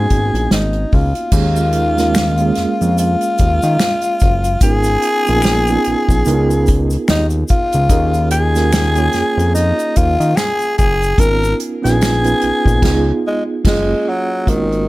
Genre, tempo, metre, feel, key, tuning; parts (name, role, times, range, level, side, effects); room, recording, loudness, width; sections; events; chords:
R&B, neo-soul; 73 BPM; 4/4; swing 59% on 16ths; A4 = 440 Hz
growling tenor saxophone; melody; 0.0-14.9 s; D#3 to A#4; -18 LUFS; left 1 dB
reed electric piano; accompaniment; 0.0-14.9 s; G#3 to C#5; -20 LUFS; right 3 dB; fast tremolo
fat analog bass; bass; 0.0-14.9 s; F#1 to D#3; -16 LUFS; equal
unplugged drum kit; drums; 0.1-14.9 s; crash cymbal, hi-hat, kick drum, snare drum; -17 LUFS; equal
tube shaker and finger snaps; percussion; 1.3-12.8 s; -29 LUFS; left 4 dB
light reverb; -12 LUFS; side -18 dB against mid
0.0-1.3 A section; 1.3-14.5 B section
band accent 12.8-14.5
0.0 G#m9; 1.3 D#9sus4; 4.6 G#m69; 6.3 C#9; 7.9 D#9sus4; 11.2 G#m69; 12.8 C#9; 13.6 F#maj9